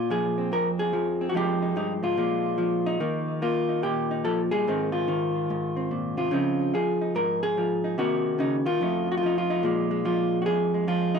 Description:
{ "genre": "solo jazz", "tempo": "145 BPM", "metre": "4/4", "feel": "swing 64% on 8ths", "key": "unclear", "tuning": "A4 = 442 Hz", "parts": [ { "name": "vintage hollow-body jazz guitar", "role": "solo", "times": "0.0-11.2 s", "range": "F2 to Bb4", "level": "-23 LUFS", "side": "equal", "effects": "tape echo" } ], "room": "little or no reverb", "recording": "dry, close 1970s-style studio recording", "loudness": "-23 LUFS", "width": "side -6 dB against mid", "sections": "0.0-11.2 A section", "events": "none", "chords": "0.0 Bbsus2; 1.3 Fm9; 2.2 Bb5; 3.0 Ebadd9; 4.7 Ab69; 6.3 Dbmaj9; 8.0 Cm7b5; 8.8 F7; 9.6 Bb5" }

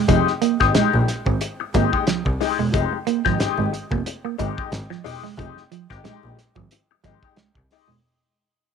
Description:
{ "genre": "funk", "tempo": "91 BPM", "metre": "4/4", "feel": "swing 56% on 16ths", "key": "F minor", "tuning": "A4 = 441 Hz", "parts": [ { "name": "semi-hollow electric guitar", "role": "riff", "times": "0.0-8.0 s", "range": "F3 to C4", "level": "-24 LUFS", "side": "right 14 dB", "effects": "none" }, { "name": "vintage hollow-body jazz guitar", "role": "accompaniment", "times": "0.1-7.9 s", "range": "Ab3 to G4", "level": "-23 LUFS", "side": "left 12 dB", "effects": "wah" }, { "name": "clear double bass", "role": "bass", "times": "0.1-8.0 s", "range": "E1 to C2", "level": "-23 LUFS", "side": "equal", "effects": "none" }, { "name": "cloth-damped thuddy drum kit", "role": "drums", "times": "0.1-7.9 s", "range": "hi-hat, kick drum, snare drum", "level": "-25 LUFS", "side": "equal", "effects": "none" } ], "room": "moderate spring reverb, RT60 2.5 s", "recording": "1960s-style stereo with parts hard left and right", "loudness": "-19 LUFS", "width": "side -6 dB against mid", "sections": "0.0-8.0 A section", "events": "fade-out 0.0-8.0", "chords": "0.0 Fm9" }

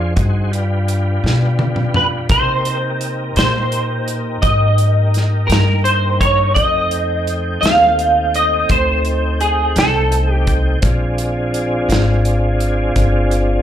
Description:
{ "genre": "slow blues", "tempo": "56 BPM (dotted quarters)", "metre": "12/8", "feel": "straight", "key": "Bb mixolydian", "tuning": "A4 = 440 Hz", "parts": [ { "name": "tonewheel organ", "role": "sustained chords", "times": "0.0-13.6 s", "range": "A3 to G5", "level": "-22 LUFS", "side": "equal", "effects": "slow rotary speaker, chorus vibrato" }, { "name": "upright bass", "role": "bass", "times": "0.0-13.6 s", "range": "G1 to C3", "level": "-17 LUFS", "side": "equal", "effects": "none" }, { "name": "natural country drum kit", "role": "drums", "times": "0.2-13.5 s", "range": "hi-hat, kick drum, snare drum, toms", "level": "-19 LUFS", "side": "equal", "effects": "none" }, { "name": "electric guitar at the edge of break-up", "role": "melody", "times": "2.0-10.5 s", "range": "Ab4 to F5", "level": "-16 LUFS", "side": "right 1 dB", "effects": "ensemble chorus, slapback echo" } ], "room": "light reverb", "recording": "live gig heard through the venue's PA, club reverb", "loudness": "-13 LUFS", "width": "side -10 dB against mid", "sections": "0.0-13.6 A section", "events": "drum fill 1.2-2.3", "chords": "0.2 G7; 2.3 Cm7; 6.6 F7; 10.8 Bb7" }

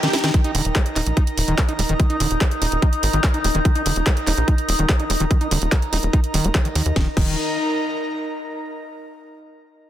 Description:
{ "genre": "psychedelic trance", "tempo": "145 BPM", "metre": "4/4", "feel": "straight", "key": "Eb major", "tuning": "A4 = 440 Hz", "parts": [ { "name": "overtone-sweeping drone", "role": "sustained chords", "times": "0.0-7.0 s", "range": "Eb4 to G5", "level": "-28 LUFS", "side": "left 2 dB", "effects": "chorus, built-in reverb, sidechain pumping" }, { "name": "overdriven acid bass", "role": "riff", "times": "0.0-7.4 s", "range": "D3 to Fb4", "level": "-27 LUFS", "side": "right 1 dB", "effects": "distortion, auto-pan, sidechain pumping, dub echo" }, { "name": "drum and bass drum kit", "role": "drums", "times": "0.0-7.3 s", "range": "crash cymbal, handclaps, hi-hat, snare drum", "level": "-25 LUFS", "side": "right 1 dB", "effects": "overdrive" }, { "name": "airy breathy pad", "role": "texture", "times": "0.0-8.6 s", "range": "Eb4 to Bb5", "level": "-28 LUFS", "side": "right 1 dB", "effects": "chorus, sidechain pumping" }, { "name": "electronic kick drum", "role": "drums", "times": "0.3-7.3 s", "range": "none", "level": "-18 LUFS", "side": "equal", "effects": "overdrive" }, { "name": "tight sequencer bass", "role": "bass", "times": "0.5-7.4 s", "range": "Eb1 to Eb2", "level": "-22 LUFS", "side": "equal", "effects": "none" } ], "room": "little or no reverb", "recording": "dense, heavily limited modern master", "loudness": "-17 LUFS", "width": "side -12 dB against mid", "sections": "0.3-7.0 A section; 7.0-8.6 B section", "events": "break 0.0-0.3; drum fill 0.0-0.3", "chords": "0.3 Eb5" }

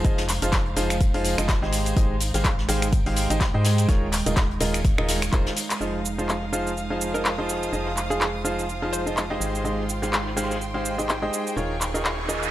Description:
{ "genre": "piano house", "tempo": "125 BPM", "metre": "4/4", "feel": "swing 57% on 16ths", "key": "F minor", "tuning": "A4 = 440 Hz", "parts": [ { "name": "clear baby grand piano", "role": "riff", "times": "0.0-12.5 s", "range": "Eb3 to F5", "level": "-27 LUFS", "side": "equal", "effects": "sidechain pumping, low-pass filter, dub echo" }, { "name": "organ-like FM bass", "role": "bass", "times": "0.0-12.5 s", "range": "Eb1 to Ab2", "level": "-28 LUFS", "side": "equal", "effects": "sidechain pumping" }, { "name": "electronic kick drum", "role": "drums", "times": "0.0-5.4 s", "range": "none", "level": "-22 LUFS", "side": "equal", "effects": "none" }, { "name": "house drum kit", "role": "drums", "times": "0.0-12.5 s", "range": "cabasa, finger snaps, handclaps, hi-hat", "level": "-28 LUFS", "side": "equal", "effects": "none" }, { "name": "vintage brush drum kit", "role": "drums", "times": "0.0-12.5 s", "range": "hi-hat, snare drum", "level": "-36 LUFS", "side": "left 2 dB", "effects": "none" }, { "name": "tambourine", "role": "percussion", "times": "0.0-5.8 s", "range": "none", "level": "-37 LUFS", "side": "left 6 dB", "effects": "none" }, { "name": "warm studio string section", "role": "texture", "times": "0.0-12.5 s", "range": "Ab3 to G5", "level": "-32 LUFS", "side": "right 2 dB", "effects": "sidechain pumping" }, { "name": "warm studio violin section", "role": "sustained chords", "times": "5.8-12.5 s", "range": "F4 to Eb6", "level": "-36 LUFS", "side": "right 2 dB", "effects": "sidechain pumping" }, { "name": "hollow square pluck", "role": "melody", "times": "7.1-9.5 s", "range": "Ab4 to C5", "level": "-33 LUFS", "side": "right 1 dB", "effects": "chorus, dub echo" }, { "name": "noise sweep", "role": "sound effects", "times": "11.8-12.5 s", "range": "none", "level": "-31 LUFS", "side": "right 5 dB", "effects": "none" } ], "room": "light reverb, studio ambience", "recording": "none", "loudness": "-21 LUFS", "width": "side -14 dB against mid", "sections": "0.0-5.8 A section; 5.8-12.5 B section", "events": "drum fill 5.3-5.8; band accent 5.7; noise sweep 11.8-12.5", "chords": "0.0 Fm7; 1.7 Abmaj7; 3.9 Eb9sus4; 5.8 Fm7; 9.4 Abmaj7; 11.6 Eb9sus4" }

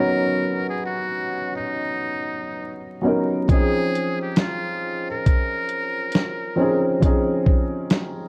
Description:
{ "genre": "lo-fi hip hop", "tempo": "68 BPM", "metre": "4/4", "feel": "swing 62% on 16ths", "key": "unclear", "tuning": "A4 = 441 Hz", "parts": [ { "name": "trumpet with metal mute", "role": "melody", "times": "0.0-7.0 s", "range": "D#4 to A#4", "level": "-30 LUFS", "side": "equal", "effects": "none" }, { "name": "felt-muted upright piano", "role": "accompaniment", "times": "0.0-8.3 s", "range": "E#3 to C#5", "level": "-25 LUFS", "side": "equal", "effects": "cassette tape" }, { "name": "dusty soul sampler-style drum kit", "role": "drums", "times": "3.5-8.2 s", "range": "hi-hat, kick drum, snare drum", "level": "-21 LUFS", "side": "equal", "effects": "none" } ], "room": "studio reverb", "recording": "worn, warbling old tape, cassette tape, vinyl crackle, warbly pitch drift", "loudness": "-22 LUFS", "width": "mono", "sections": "0.0-8.3 A section", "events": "none", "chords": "0.0 Bmaj9; 3.5 C#maj9" }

